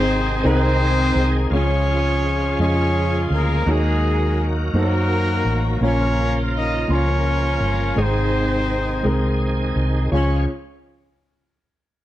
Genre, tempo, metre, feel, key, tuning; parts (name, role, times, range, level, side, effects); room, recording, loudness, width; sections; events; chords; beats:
slow gospel; 56 BPM (dotted quarters); 6/8; straight; Db major; A4 = 439 Hz
warm horn section; melody; 0.0-10.5 s; Ab3 to Eb5; -23 LUFS; left 1 dB
warm concert grand piano; accompaniment; 0.0-10.5 s; Db2 to C6; -24 LUFS; equal
bright tonewheel organ; sustained chords; 0.0-10.5 s; C3 to Db5; -27 LUFS; right 2 dB; fast rotary speaker, overdrive, chorus vibrato
hollow-body short-scale fingered electric bass; bass; 0.0-10.5 s; G1 to Gb2; -20 LUFS; equal
light reverb; -17 LUFS; side -14 dB against mid
0.0-1.5 A section; 1.5-10.1 B section; 10.1-12.0 C section
0.0 Ab; 1.5 Db; 3.7 Ebm; 5.8 Bbm; 8.0 Ab; 10.1 Db
0.45 | 1.52 2.60 | 3.67 4.75 | 5.82 6.90 | 7.97 9.05 | 10.12